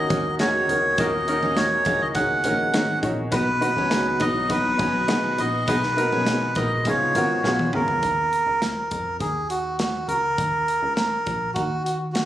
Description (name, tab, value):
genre	piano-driven pop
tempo	102 BPM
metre	4/4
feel	straight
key	Eb minor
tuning	A4 = 440 Hz
part	melodica	melody	0.0-12.3 s	Gb4 to Gb5	-22 LUFS	right 1 dB	plate reverb
part	dark French horn section	second line	0.0-7.7 s	Eb3 to Ab4	-34 LUFS	right 2 dB	none
part	warm upright piano	accompaniment	0.0-8.1 s	Ab2 to Db5	-26 LUFS	left 1 dB	plate reverb
part	sweeping resonant pad	sustained chords	0.0-8.0 s	Db3 to Gb4	-33 LUFS	equal	none
part	picked steel-string acoustic guitar	riff	0.0-7.3 s	Bb3 to Eb4	-31 LUFS	right 3 dB	none
part	plucky analog bass	bass	0.0-12.3 s	Ab1 to F2	-30 LUFS	equal	none
part	modern studio drum kit	drums	0.1-12.3 s	hi-hat, kick drum, snare drum, toms	-28 LUFS	equal	none
room	moderate studio reverb, RT60 0.7 s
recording	recorded on a phone in the room, club reverb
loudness	-20 LUFS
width	side -12 dB against mid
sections	0.0-8.0 A section; 8.0-12.3 B section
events	drum fill 7.4-8.0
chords	0.0 Ebm7; 3.3 Abm7/Cb; 6.9 Db7; 8.0 Eb5